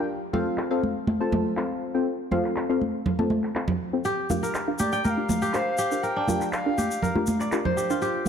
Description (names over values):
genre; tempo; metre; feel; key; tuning
afro house; 121 BPM; 4/4; straight; G minor; A4 = 440 Hz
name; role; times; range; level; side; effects
deep mellow chord stab; stabs; 0.0-8.0 s; C4 to Bb5; -28 LUFS; left 2 dB; chorus, ping-pong delay
congas; percussion; 0.3-8.3 s; none; -27 LUFS; right 1 dB; none
electronic handclaps; drums; 0.6-7.6 s; none; -35 LUFS; equal; low-pass filter on snare, studio reverb, low-pass filter on toms
kora; arpeggios; 4.0-8.3 s; D4 to G5; -27 LUFS; equal; ping-pong delay
tube shaker; percussion; 4.0-8.3 s; none; -38 LUFS; left 4 dB; none
bright reedy bansuri; melody; 4.8-7.5 s; D5 to G5; -31 LUFS; left 2 dB; ping-pong delay
room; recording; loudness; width
moderate scoring stage reverb, RT60 2.0 s; dark, warm production; -23 LUFS; side -7 dB against mid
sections
0.0-8.3 A section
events
filter sweep on synth stab 0.0-8.3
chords
0.1 F; 4.0 Gm7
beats
| 0.08 0.58 1.07 1.57 | 2.07 2.56 3.06 3.55 | 4.05 4.55 5.04 5.54 | 6.03 6.53 7.03 7.52 | 8.02